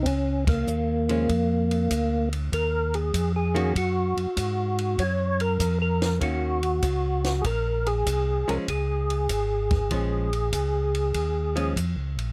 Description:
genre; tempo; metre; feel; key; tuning
soul jazz organ trio; 97 BPM; 4/4; swing 68% on 8ths; Bb minor; A4 = 437 Hz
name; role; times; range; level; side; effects
percussive tonewheel organ; melody; 0.0-11.7 s; Bb3 to Db5; -29 LUFS; equal; slow rotary speaker, chorus vibrato
mellow tonewheel organ; bass; 0.0-12.3 s; Ab1 to Ab2; -29 LUFS; equal; overdrive, chorus vibrato, slow rotary speaker
compact cocktail drum kit; drums; 0.1-12.3 s; hi-hat, kick drum, ride cymbal, snare drum; -33 LUFS; equal; none
archtop guitar, miked and amplified; accompaniment; 1.1-11.7 s; Eb3 to Gb4; -31 LUFS; equal; none
room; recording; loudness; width
light reverb; close, detailed microphones; -25 LUFS; mono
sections
0.0-12.3 A section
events
band accent 0.4-0.7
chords
0.0 Bbm; 2.5 Ebm7; 7.4 Bbm7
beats
| 0.06 0.67 1.29 1.91 | 2.52 3.14 3.75 4.37 | 4.98 5.60 6.22 6.83 | 7.45 8.07 8.68 9.30 | 9.92 10.53 11.15 11.77

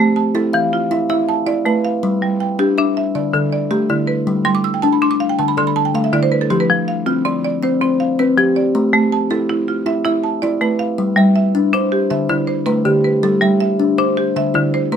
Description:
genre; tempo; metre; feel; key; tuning
southern african traditional, mbira-style interlocking cycle; 107 BPM (dotted quarters); 12/8; straight; G mixolydian; A4 = 440 Hz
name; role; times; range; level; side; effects
buzzing marimba with hard mallets; arpeggios; 0.0-15.0 s; D3 to E6; -17 LUFS; right 3 dB; none
kalimba; arpeggios; 0.0-15.0 s; D3 to F5; -17 LUFS; left 2 dB; none
room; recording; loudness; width
light reverb; none; -14 LUFS; side -8 dB against mid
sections
0.0-11.0 A section; 11.0-15.0 B section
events
marimba fill 4.3-6.5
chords
0.0 A5; 2.0 G; 3.1 D5; 4.3 G; 5.4 D5; 6.5 F5; 8.7 A5; 11.0 G; 12.1 D5; 13.2 G; 14.4 D5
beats
0.35 0.91 1.47 | 2.03 2.59 3.15 3.71 | 4.27 4.83 5.38 5.94 | 6.50 7.06 7.62 8.18 | 8.74 9.30 9.86 10.42 | 10.98 11.54 12.11 12.67 | 13.23 13.79 14.35 14.91

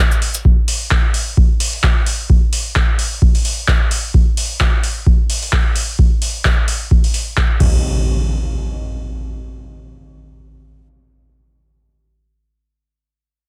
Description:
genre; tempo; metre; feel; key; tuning
acid house; 130 BPM; 4/4; swing 56% on 16ths; none; none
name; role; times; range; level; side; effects
booming analog drum machine; drums; 0.1-7.7 s; crash cymbal, handclaps, hi-hat; -23 LUFS; equal; none
electronic kick drum; drums; 0.5-7.7 s; none; -16 LUFS; equal; none
impact; sound effects; 7.6-12.4 s; none; -22 LUFS; equal; none
room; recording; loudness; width
little or no reverb; dense, heavily limited modern master; -16 LUFS; mono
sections
0.0-7.8 A section; 7.8-11.5 B section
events
none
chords
none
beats
| 0.45 0.91 1.37 1.83 | 2.30 2.76 3.22 3.68 | 4.14 4.60 5.07 5.53 | 5.99 6.45 6.91 7.37 | 7.83 8.30 8.76 9.22 | 9.68 10.14 10.60 11.06

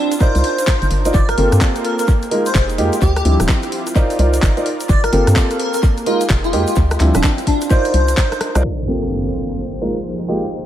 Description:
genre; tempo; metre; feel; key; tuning
UK garage, two-step garage; 128 BPM; 4/4; swing 62% on 16ths; G minor; A4 = 440 Hz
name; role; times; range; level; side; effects
airy dreamy lead; melody; 0.0-8.4 s; D4 to D5; -21 LUFS; equal; chorus, tape echo
warm analog pad; sustained chords; 0.0-10.7 s; G2 to D5; -27 LUFS; right 1 dB; chorus, sidechain pumping
garage drum kit; drums; 0.1-10.4 s; handclaps, hi-hat, rim click; -25 LUFS; left 1 dB; low-pass filter on snare, low-pass filter on hats, tape echo
tube shaker; percussion; 0.1-8.6 s; none; -33 LUFS; left 1 dB; tape echo
dark concert grand piano; stabs; 0.2-10.4 s; F3 to D5; -20 LUFS; right 1 dB; dub echo
electronic kick drum; drums; 0.2-8.3 s; none; -15 LUFS; equal; none
hollow knocking FM bass; bass; 0.4-8.6 s; D1 to G2; -16 LUFS; equal; sidechain pumping
impact; sound effects; 8.6-10.5 s; none; -25 LUFS; equal; none
room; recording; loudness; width
light reverb, digital ambience; echo-heavy mix, vinyl crackle, low-pass filter; -14 LUFS; side -11 dB against mid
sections
0.0-8.6 A section; 8.6-10.7 B section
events
drum fill 8.3-8.6; band accent 8.5; impact 8.6-10.5; filter sweep on analog synth pad 8.6-10.7; filter sweep 8.6-10.7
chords
0.2 Cm11; 1.1 Gm11; 2.1 Fm11; 3.0 Dm11; 4.0 Cm11; 4.9 Gm11; 5.8 Fm11; 6.8 Dm11; 7.7 Cm11; 8.6 Gm11; 9.6 Fm11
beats
0.20 0.67 | 1.14 1.61 2.08 2.55 | 3.02 3.48 3.95 4.42 | 4.89 5.36 5.83 6.30 | 6.77 7.24 7.70 8.17 | 8.64 9.11 9.58 10.05 | 10.52

